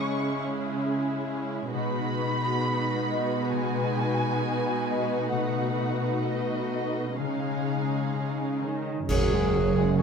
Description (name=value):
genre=cinematic, emotional film score for orchestra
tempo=62-70 BPM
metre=4/4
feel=rubato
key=unclear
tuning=A4 = 440 Hz
part: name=muted studio violin section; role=melody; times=0.0-10.0 s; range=D#5 to C#6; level=-34 LUFS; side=equal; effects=none
part: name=muted symphonic violin section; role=second line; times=0.0-10.0 s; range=D#4 to C#5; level=-33 LUFS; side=left 2 dB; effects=none
part: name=muted symphonic viola section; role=accompaniment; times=0.0-10.0 s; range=F#3 to D#4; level=-33 LUFS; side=right 4 dB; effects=none
part: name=concert harp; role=arpeggios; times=0.0-10.0 s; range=F#2 to D#5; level=-32 LUFS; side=left 9 dB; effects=none
part: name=muted symphonic cello section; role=bass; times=0.0-10.0 s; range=F#2 to D#3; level=-30 LUFS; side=right 3 dB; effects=none
part: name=clear clarinet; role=second line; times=9.1-10.0 s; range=F#4 to G#4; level=-28 LUFS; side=equal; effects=none
part: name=muted symphonic double bass section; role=bass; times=9.1-10.0 s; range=F#1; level=-28 LUFS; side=right 6 dB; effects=none
part: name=clash cymbals and concert bass drum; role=percussion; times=9.1-10.0 s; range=none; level=-28 LUFS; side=right 2 dB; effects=none
room=moderate scoring stage reverb, RT60 1.8 s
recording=close, detailed microphones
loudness=-25 LUFS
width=side -6 dB against mid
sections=0.0-9.1 A section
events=band accent 9.1-10.0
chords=0.0 C#m; 1.7 G#m7/B; 5.3 B7; 7.2 C#add9; 9.1 F#sus2